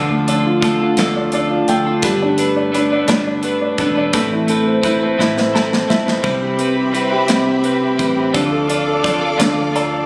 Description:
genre	six-eight pop ballad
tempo	57 BPM (dotted quarters)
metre	6/8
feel	straight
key	unclear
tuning	A4 = 440 Hz
part	warm concert grand piano	accompaniment	0.0-10.1 s	D3 to A5	-19 LUFS	equal	none
part	twelve-string electric guitar	arpeggios	0.0-10.1 s	G2 to B4	-23 LUFS	equal	none
part	woody fretless electric bass	bass	0.0-10.1 s	E1 to D2	-30 LUFS	equal	none
part	modern studio drum kit	drums	0.3-9.9 s	hi-hat, kick drum, snare drum, splash cymbal	-23 LUFS	equal	none
part	dark studio string section	sustained chords	6.2-10.1 s	C4 to D6	-24 LUFS	equal	none
room	light reverb, small room ambience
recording	recorded on a phone in the room, studio reverb, compression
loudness	-16 LUFS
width	mono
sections	0.0-10.1 A section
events	grand piano fill 1.0-2.0, 5.2-6.2, 9.4-10.1; drum fill 5.2-6.2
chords	0.0 Dm; 2.0 Gadd9; 4.1 Amadd9; 6.2 Cmaj7; 8.3 Dm

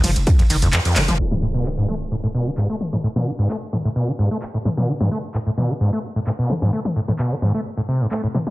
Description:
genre	driving peak-time techno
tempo	130 BPM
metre	4/4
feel	straight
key	unclear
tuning	A4 = 439 Hz
part	screaming distorted acid line	riff	0.0-8.4 s	F2 to A3	-20 LUFS	equal	distortion, chorus, sidechain pumping, digital delay
part	growling 808-style bass	bass	0.0-1.2 s	F1	-22 LUFS	equal	overdrive, sidechain pumping, low-pass filter
part	jazz brush drum kit	drums	0.0-1.2 s	hi-hat, snare drum	-31 LUFS	right 2 dB	high-pass filter on hats, high-pass filter on snare, high-pass filter on room
part	punchy analog drum machine	drums	0.0-8.5 s	handclaps, hi-hat, ride cymbal, shaker, toms	-24 LUFS	left 1 dB	sidechain pumping on hats, sidechain pumping on cymbals, sidechain pumping on perc, sidechain pumping on toms
part	impact	sound effects	1.2-3.0 s	none	-27 LUFS	equal	none
room	moderate stone room reverb, RT60 1.3 s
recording	low-pass filter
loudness	-18 LUFS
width	side -19 dB against mid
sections	0.0-1.2 A section; 1.2-8.5 B section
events	drop 0.0-1.2; drum fill 1.0; band accent 1.0; impact 1.2-3.0; filter sweep 1.2-8.5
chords	0.0 F5; 1.2 N.C.

